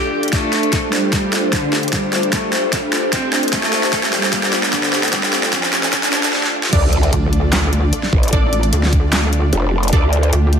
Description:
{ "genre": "heavy wobble dubstep", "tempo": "150 BPM", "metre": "4/4", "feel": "half-time", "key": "D minor", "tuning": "A4 = 440 Hz", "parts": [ { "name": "warm cello", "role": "melody", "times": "0.0-5.8 s", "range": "D3 to G4", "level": "-22 LUFS", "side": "equal", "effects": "low-pass filter, digital delay" }, { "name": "supersaw pad", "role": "sustained chords", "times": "0.0-10.6 s", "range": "A3 to D5", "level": "-25 LUFS", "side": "equal", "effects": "sidechain pumping" }, { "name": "airy breathy pad", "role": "texture", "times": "0.0-6.3 s", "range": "D4 to D5", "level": "-23 LUFS", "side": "equal", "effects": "chorus, sidechain pumping" }, { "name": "dubstep drum kit", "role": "drums", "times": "0.2-10.6 s", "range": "crash cymbal, handclaps, hi-hat, snare drum", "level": "-18 LUFS", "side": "equal", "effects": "overdrive, high-pass filter on hats, small room ambience, high-pass filter on snare, high-pass filter on cymbals" }, { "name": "electronic kick drum", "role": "drums", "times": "0.3-10.0 s", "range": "none", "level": "-18 LUFS", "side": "equal", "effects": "overdrive, small room ambience" }, { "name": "riser and impact", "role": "sound effects", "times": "2.2-8.3 s", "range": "none", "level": "-24 LUFS", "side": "equal", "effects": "none" }, { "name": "orchestra-hit-like synth stab", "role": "stabs", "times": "6.7-10.0 s", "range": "D4 to D5", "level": "-24 LUFS", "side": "right 1 dB", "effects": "built-in reverb, phaser, digital delay" }, { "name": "growl bass", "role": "bass", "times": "6.7-10.3 s", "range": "F1 to D2", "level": "-16 LUFS", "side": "equal", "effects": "chorus, overdrive" }, { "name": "pulsing pluck wobble bass", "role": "bass", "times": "7.1-10.6 s", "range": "A1 to D2", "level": "-15 LUFS", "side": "equal", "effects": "chorus, overdrive" } ], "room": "light reverb, digital ambience", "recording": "high-pass filter", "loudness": "-14 LUFS", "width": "side -7 dB against mid", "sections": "0.0-6.7 A section; 6.7-10.6 B section", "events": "build-up 0.0-6.7; drum fill 0.0-6.3, 6.3-6.7; filter sweep on cello 0.0-6.7; filter sweep 0.0-6.7; riser 2.2-6.3; drop 6.7-10.6; impact 6.7-8.3", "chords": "0.0 Dm" }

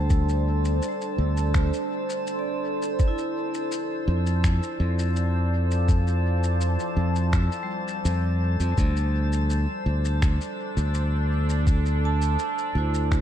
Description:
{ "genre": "ambient dub", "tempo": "83 BPM", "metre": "4/4", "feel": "straight", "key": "D minor", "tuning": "A4 = 438 Hz", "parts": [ { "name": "deep dark ambient pad", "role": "sustained chords", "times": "0.0-13.2 s", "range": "F3 to A5", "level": "-31 LUFS", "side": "right 1 dB", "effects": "chorus, built-in reverb" }, { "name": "vibraphone with medium hard mallets", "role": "arpeggios", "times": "0.0-13.2 s", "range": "G3 to A5", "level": "-34 LUFS", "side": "right 3 dB", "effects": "dub echo" }, { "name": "modern bright fingered electric bass", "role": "bass", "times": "0.0-13.2 s", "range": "D2 to F2", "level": "-22 LUFS", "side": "equal", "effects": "none" }, { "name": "drifting glass-harmonics texture", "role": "texture", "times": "0.0-13.2 s", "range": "A4 to A5", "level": "-35 LUFS", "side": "left 4 dB", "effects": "chorus, built-in reverb" }, { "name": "electronic kick drum", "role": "drums", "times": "0.1-13.2 s", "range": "none", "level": "-22 LUFS", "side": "equal", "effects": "none" }, { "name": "electronic shaker and finger snaps", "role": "drums", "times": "0.1-13.2 s", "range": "none", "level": "-36 LUFS", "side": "left 2 dB", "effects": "dub echo" } ], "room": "digital ambience", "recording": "none", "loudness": "-22 LUFS", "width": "side -10 dB against mid", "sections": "0.0-13.2 A section", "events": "none", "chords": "0.0 D7(no3); 3.0 F6; 8.8 Dm7" }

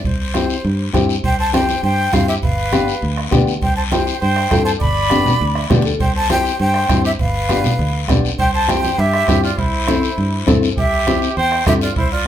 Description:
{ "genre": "latin, cumbia", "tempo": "201 BPM", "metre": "4/4", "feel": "straight", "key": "C major", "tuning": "A4 = 440 Hz", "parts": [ { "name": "breathy jazz flute", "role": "melody", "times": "0.0-12.3 s", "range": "C5 to B5", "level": "-20 LUFS", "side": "left 1 dB", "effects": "none" }, { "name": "fingered electric bass", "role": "bass", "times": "0.0-12.3 s", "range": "G1 to G2", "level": "-20 LUFS", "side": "equal", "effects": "none" }, { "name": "bombo", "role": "percussion", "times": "0.0-12.1 s", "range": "none", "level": "-22 LUFS", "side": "right 2 dB", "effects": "none" }, { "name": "guiro", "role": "percussion", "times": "0.1-12.3 s", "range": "none", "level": "-27 LUFS", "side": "left 5 dB", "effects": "none" }, { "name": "nylon-string guitar", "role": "accompaniment", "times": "0.3-11.9 s", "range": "B3 to E5", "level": "-20 LUFS", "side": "left 4 dB", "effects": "none" }, { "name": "congas", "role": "percussion", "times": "0.3-11.8 s", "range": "none", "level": "-21 LUFS", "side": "right 1 dB", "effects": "none" }, { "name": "warm trumpet", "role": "second line", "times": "1.2-12.3 s", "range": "E4 to D5", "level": "-24 LUFS", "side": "right 4 dB", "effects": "none" } ], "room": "wet small room reverb, RT60 0.5 s", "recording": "band playing live in one room", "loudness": "-14 LUFS", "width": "side -10 dB against mid", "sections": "0.0-1.2 A section; 1.2-10.8 A section; 10.8-12.3 B section", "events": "nylon-string guitar fill 5.4-6.0", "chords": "0.0 C; 2.4 G7; 3.6 C; 4.8 G; 6.0 C; 7.2 G7; 8.4 C" }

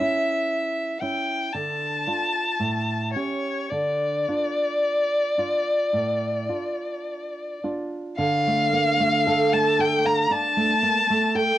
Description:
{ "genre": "romantic duo for violin and classical guitar", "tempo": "53-58 BPM", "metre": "4/4", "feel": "rubato", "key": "D minor", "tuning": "A4 = 441 Hz", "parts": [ { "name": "rich violin", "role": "melody", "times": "0.0-11.6 s", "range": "C#5 to Bb5", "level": "-22 LUFS", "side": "left 2 dB", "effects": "cassette tape" }, { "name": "nylon-string guitar", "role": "accompaniment", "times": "0.0-11.6 s", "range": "A2 to F5", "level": "-26 LUFS", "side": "right 3 dB", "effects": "cassette tape" } ], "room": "light reverb", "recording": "home recording on cassette", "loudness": "-21 LUFS", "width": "side -13 dB against mid", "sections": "0.0-8.2 A section; 8.2-11.6 B section", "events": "none", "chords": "0.0 A (rootless); 1.5 Dm; 2.6 A7; 3.7 Dm" }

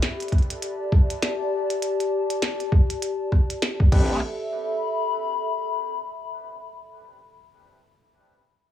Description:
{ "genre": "glitch hop", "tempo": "100 BPM", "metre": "4/4", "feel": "swing 60% on 16ths", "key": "unclear", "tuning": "A4 = 440 Hz", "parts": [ { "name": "glitchy drum kit", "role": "drums", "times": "0.0-4.1 s", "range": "crash cymbal, hi-hat, rim click, snare drum", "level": "-29 LUFS", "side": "equal", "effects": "none" }, { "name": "warbly tape-like pad", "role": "texture", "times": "0.0-6.6 s", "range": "G4 to B5", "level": "-27 LUFS", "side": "left 2 dB", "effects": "chorus, built-in reverb, sidechain pumping" }, { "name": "electronic kick drum", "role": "drums", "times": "0.3-4.1 s", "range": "none", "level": "-17 LUFS", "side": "equal", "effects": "overdrive" }, { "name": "barky tine electric piano", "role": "stabs", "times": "3.9-4.2 s", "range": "C4 to B4", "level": "-35 LUFS", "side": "left 1 dB", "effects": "sidechain pumping, dub echo" }, { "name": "growl bass", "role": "bass", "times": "3.9-4.2 s", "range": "A1", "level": "-25 LUFS", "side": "equal", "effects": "distortion, chorus, tube saturation" } ], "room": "light reverb", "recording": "small room ambience", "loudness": "-21 LUFS", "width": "side -11 dB against mid", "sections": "0.0-4.2 A section; 4.2-6.6 B section", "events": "none", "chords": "0.0 G6; 3.9 Am11; 4.2 Asus2" }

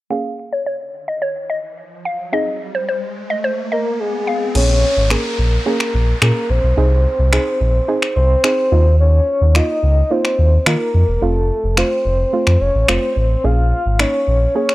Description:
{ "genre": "dance-pop", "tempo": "108 BPM", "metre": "4/4", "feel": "straight", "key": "Bb minor", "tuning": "A4 = 441 Hz", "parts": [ { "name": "mallet-like synth pluck", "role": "melody", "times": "0.1-4.4 s", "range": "C5 to F5", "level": "-22 LUFS", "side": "left 1 dB", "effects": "chorus, low-pass filter, tape echo" }, { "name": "soft round pluck", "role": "accompaniment", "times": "0.1-14.7 s", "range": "A3 to Ab4", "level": "-23 LUFS", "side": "right 3 dB", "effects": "chorus, low-pass filter" }, { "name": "riser and downlifter", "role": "sound effects", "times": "2.0-9.0 s", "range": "none", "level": "-29 LUFS", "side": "left 1 dB", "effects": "none" }, { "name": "soft octave-layered synth lead", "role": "melody", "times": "3.7-14.7 s", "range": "Ab4 to F5", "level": "-19 LUFS", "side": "left 1 dB", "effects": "chorus, tremolo" }, { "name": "sub bass with octave", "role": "bass", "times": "4.6-14.5 s", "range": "E1 to Eb3", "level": "-14 LUFS", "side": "equal", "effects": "none" }, { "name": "pop drum kit", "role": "drums", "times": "4.6-14.7 s", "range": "crash cymbal, finger snaps", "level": "-19 LUFS", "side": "equal", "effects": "none" } ], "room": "digital ambience", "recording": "dry, gritty hardware recording, transformer saturation, cassette tape", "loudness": "-14 LUFS", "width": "side -17 dB against mid", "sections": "0.1-4.6 A section; 4.6-14.7 B section", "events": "filter sweep 0.1-4.6; riser 2.0-4.6", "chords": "0.1 Bbm7; 2.3 Ab/C; 4.3 N.C.; 4.6 Bbm7; 6.8 Ab; 8.7 Ebsus2; 11.2 F; 13.4 Bbm7" }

